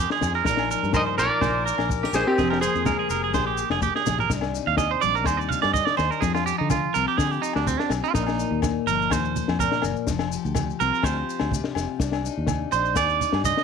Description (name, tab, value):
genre	highlife guitar band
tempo	125 BPM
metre	4/4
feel	swing 53% on 16ths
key	C minor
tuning	A4 = 437 Hz
part	semi-hollow electric guitar	melody	0.0-4.0 s	C4 to F5	-24 LUFS	right 1 dB	none
part	clear trumpet	second line	0.0-4.0 s	C4 to C5	-34 LUFS	left 13 dB	none
part	picked steel-string acoustic guitar	accompaniment	0.0-13.6 s	Bb2 to C5	-30 LUFS	left 13 dB	none
part	clean electric guitar	arpeggios	0.0-13.6 s	C4 to F5	-24 LUFS	right 12 dB	slapback echo
part	fingered electric bass	bass	0.0-13.5 s	F1 to D3	-29 LUFS	equal	none
part	compact cocktail drum kit	drums	0.1-13.6 s	kick drum, snare drum, toms	-28 LUFS	left 4 dB	none
part	agogo bells	percussion	0.2-13.5 s	none	-34 LUFS	left 13 dB	none
part	congas	percussion	0.2-13.6 s	none	-33 LUFS	right 7 dB	none
part	maracas	percussion	0.2-13.6 s	none	-38 LUFS	left 14 dB	none
room	light reverb, studio ambience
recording	1960s-style stereo with parts hard left and right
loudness	-21 LUFS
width	side -6 dB against mid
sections	0.0-4.3 A section; 4.3-13.6 B section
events	drum fill 3.8-4.3; clean electric guitar solo 4.3-13.6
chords	0.5 Bbsus4; 2.4 Fmadd9; 4.3 Cmadd9; 6.2 Fsus2; 8.2 Bbsus4; 10.1 Fsus2; 12.0 Cmadd9